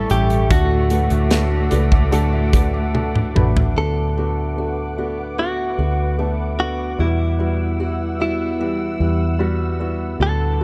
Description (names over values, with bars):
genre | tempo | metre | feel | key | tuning
pop ballad | 74 BPM | 4/4 | straight | D major | A4 = 440 Hz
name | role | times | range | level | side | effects
direct-recorded clean electric guitar | melody | 0.0-10.6 s | E4 to A4 | -26 LUFS | equal | none
warm chamber cello section | second line | 0.0-3.7 s | G2 to A3 | -28 LUFS | equal | none
dark baby grand piano | accompaniment | 0.0-10.6 s | A2 to B5 | -28 LUFS | equal | none
glassy FM pad | sustained chords | 0.0-10.6 s | G3 to E6 | -33 LUFS | equal | ensemble chorus, built-in reverb
fingerpicked steel-string acoustic guitar | arpeggios | 0.0-10.6 s | E2 to F#4 | -34 LUFS | equal | tape echo
vintage muted fingered electric bass | bass | 0.0-10.6 s | A1 to E2 | -23 LUFS | equal | none
modern studio drum kit | drums | 0.1-3.8 s | hi-hat, kick drum, snare drum, toms | -20 LUFS | equal | none
room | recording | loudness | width
studio reverb | dark, warm production | -19 LUFS | mono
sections
0.0-3.8 A section; 3.8-10.6 B section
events
grand piano fill 1.3-3.8; drum fill 2.9-3.8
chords
0.0 A; 0.5 D; 3.8 D6; 7.0 Emadd9